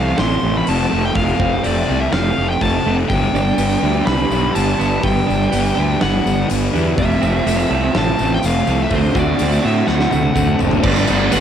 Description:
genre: rock, shoegaze and dream pop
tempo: 124 BPM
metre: 4/4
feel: straight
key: G major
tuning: A4 = 440 Hz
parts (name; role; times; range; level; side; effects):
- fuzz lead guitar; melody; 0.0-11.4 s; C5 to C6; -22 LUFS; left 2 dB; distortion, cassette tape, tape echo
- direct-recorded clean electric guitar; arpeggios; 0.0-11.4 s; A3 to F#4; -25 LUFS; right 11 dB; wide subtle chorus, cassette tape, tape echo
- fuzz guitar; riff; 0.0-11.4 s; F2 to D4; -22 LUFS; left 10 dB; distortion, wide subtle chorus, cassette tape
- raw garage guitar; riff; 0.0-11.4 s; F2 to F#4; -22 LUFS; right 10 dB; overdrive, reverse reverb, cassette tape
- fuzz fingered electric bass; bass; 0.0-11.4 s; F1 to A2; -19 LUFS; equal; overdrive
- big rock drum kit; drums; 0.2-11.4 s; crash cymbal, hi-hat, kick drum, snare drum, toms; -24 LUFS; equal; none
- warbly tape-like pad; sustained chords; 3.9-11.4 s; D4 to B5; -29 LUFS; equal; none
- tambourine; percussion; 3.1-11.4 s; none; -37 LUFS; left 9 dB; none
room: light reverb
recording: home recording on cassette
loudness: -14 LUFS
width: side -9 dB against mid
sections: 0.0-10.8 A section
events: drum fill 9.9-10.8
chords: 0.0 F; 3.1 G; 7.0 Fmaj7; 8.9 D7; 10.8 G

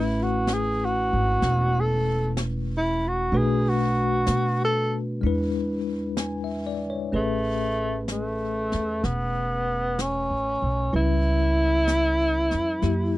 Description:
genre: jazz ballad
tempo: 63 BPM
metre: 4/4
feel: swing 69% on 8ths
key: A major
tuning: A4 = 436 Hz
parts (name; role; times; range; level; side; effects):
- breathy tenor saxophone; melody; 0.0-13.2 s; A3 to A4; -25 LUFS; equal; none
- bell-like tine electric piano; accompaniment; 0.0-13.2 s; F#3 to G#5; -29 LUFS; left 3 dB; medium stereo tremolo
- upright bass; bass; 0.0-13.2 s; E1 to B2; -27 LUFS; right 1 dB; none
- jazz brush drum kit; drums; 0.5-13.2 s; brushed snare drum, hi-hat, snare drum; -34 LUFS; left 1 dB; none
room: little or no reverb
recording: dry, close 1970s-style studio recording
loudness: -22 LUFS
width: side -16 dB against mid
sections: 0.0-7.1 A section; 7.1-13.2 B section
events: tenor saxophone solo 0.0-7.1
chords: 0.0 Aadd9; 3.3 Bm7; 5.2 E7; 7.1 Amaj9; 10.9 C#m7b5

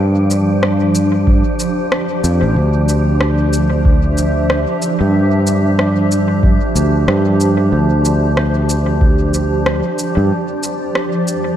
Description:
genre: ambient dub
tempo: 93 BPM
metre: 4/4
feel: swing 57% on 16ths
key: unclear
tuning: A4 = 439 Hz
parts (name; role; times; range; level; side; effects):
- granular cloud pad; sustained chords; 0.0-11.6 s; F3 to F5; -18 LUFS; right 1 dB; built-in reverb
- overdriven fingered electric bass; bass; 0.0-10.3 s; A1 to G2; -14 LUFS; equal; none
- wind-like tuned noise texture; texture; 0.0-11.6 s; D4 to D5; -26 LUFS; left 1 dB; built-in reverb
- electronic shaker and rim click; drums; 0.3-11.4 s; none; -21 LUFS; equal; overdrive, dub echo
- electronic kick drum; drums; 1.3-9.2 s; none; -14 LUFS; equal; none
room: light reverb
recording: none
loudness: -12 LUFS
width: side -10 dB against mid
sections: 0.0-11.6 A section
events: break 10.3-11.6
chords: 0.0 Dm; 2.6 C/D

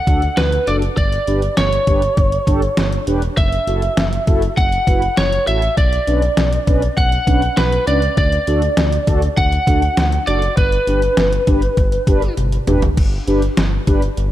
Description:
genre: synth-pop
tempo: 100 BPM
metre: 4/4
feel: straight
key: unclear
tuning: A4 = 440 Hz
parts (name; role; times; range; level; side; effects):
- lightly driven lead guitar; melody; 0.0-12.3 s; B4 to F#5; -19 LUFS; equal; slapback echo
- mellow synth brass; accompaniment; 0.1-14.0 s; C#4 to B4; -23 LUFS; right 1 dB; chorus
- smooth synth bass; bass; 0.1-14.3 s; E1 to D2; -19 LUFS; equal; none
- detuned 8-bit digital drum machine; drums; 0.1-14.3 s; crash cymbal, hi-hat, kick drum, snare drum, toms; -18 LUFS; equal; none
room: light reverb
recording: dark, warm production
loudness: -14 LUFS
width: side -13 dB against mid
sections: 0.0-13.0 A section; 13.0-14.3 B section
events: drum fill 12.4-13.0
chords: 0.0 D; 1.0 G; 3.4 F#m7; 5.8 Bmadd9; 8.2 D; 10.6 G

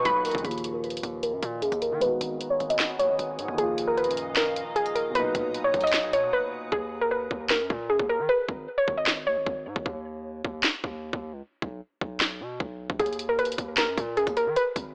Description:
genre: hip hop, trap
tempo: 153 BPM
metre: 4/4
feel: half-time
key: Eb minor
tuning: A4 = 440 Hz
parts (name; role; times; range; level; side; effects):
- soft round pluck; melody; 0.0-9.8, 13.0-14.9 s; Ab4 to B5; -28 LUFS; equal; chorus, low-pass filter, tape echo
- dark baby grand piano; accompaniment; 0.0-6.7 s; A#2 to Gb4; -37 LUFS; equal; low-pass filter
- glassy FM pad; sustained chords; 0.0-6.7 s; Eb3 to Eb6; -42 LUFS; equal; ensemble chorus, built-in reverb, low-pass filter
- distorted 808-style bass; bass; 0.0-14.9 s; Ab1 to Eb3; -39 LUFS; equal; distortion
- trap drum kit; drums; 0.1-14.9 s; handclaps, hi-hat, kick drum, snare drum; -31 LUFS; equal; none
room: light reverb, digital ambience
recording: AM radio sound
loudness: -27 LUFS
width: mono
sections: 0.4-6.7 A section; 6.7-14.9 B section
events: filter sweep 0.4-6.7; break 6.3-6.7, 9.9-13.0; hi-hats muted 6.7-13.0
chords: 0.4 Ebsus2; 2.0 Abm7; 3.6 Ebsus2; 5.2 Bmaj7; 6.7 Eb5; 8.3 Abm; 9.9 N.C.; 13.0 Eb5

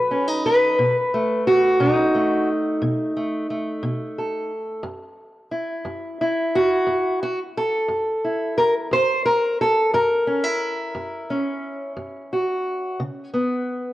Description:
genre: acoustic country blues, solo or duo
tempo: 59 BPM (dotted quarters)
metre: 12/8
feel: straight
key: unclear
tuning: A4 = 441 Hz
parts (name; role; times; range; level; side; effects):
- fingerpicked steel-string acoustic guitar; solo; 0.0-13.9 s; F#2 to B#4; -19 LUFS; equal; cassette tape
room: moderate spring reverb, RT60 2.3 s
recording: home recording on cassette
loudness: -19 LUFS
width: side -15 dB against mid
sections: 0.0-13.9 A section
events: none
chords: 0.0 B7; 4.8 F#7; 13.0 C#7(no3)

